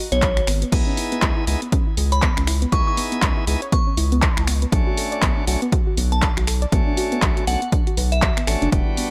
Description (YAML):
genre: deep house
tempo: 120 BPM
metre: 4/4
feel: swing 59% on 16ths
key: unclear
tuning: A4 = 440 Hz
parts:
  - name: soft round pluck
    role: arpeggios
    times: 0.0-9.1 s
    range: B3 to D5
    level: -30 LUFS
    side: equal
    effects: chorus, sidechain pumping, digital delay
  - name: glassy synth bell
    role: melody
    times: 0.1-8.5 s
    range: C#5 to C#6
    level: -30 LUFS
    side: equal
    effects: chorus, phaser, dub echo
  - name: round analog bass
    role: bass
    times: 0.1-8.8 s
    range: E1 to C#2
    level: -24 LUFS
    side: equal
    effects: sidechain pumping
  - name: deep house drum kit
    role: drums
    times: 0.1-9.1 s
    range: crash cymbal, finger snaps, handclaps, hi-hat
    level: -27 LUFS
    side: equal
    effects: overdrive
  - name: electronic kick drum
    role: drums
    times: 0.2-8.8 s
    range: none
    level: -23 LUFS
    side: equal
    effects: overdrive
  - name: bright tonewheel organ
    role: stabs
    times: 0.7-9.1 s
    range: G3 to G#4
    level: -30 LUFS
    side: equal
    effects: overdrive, stopped rotary speaker, sidechain pumping, tape echo
room: digital ambience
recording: none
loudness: -20 LUFS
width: mono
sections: 0.0-9.1 A section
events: none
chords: 0.0 G#m7; 0.7 C#m7; 4.7 Bm7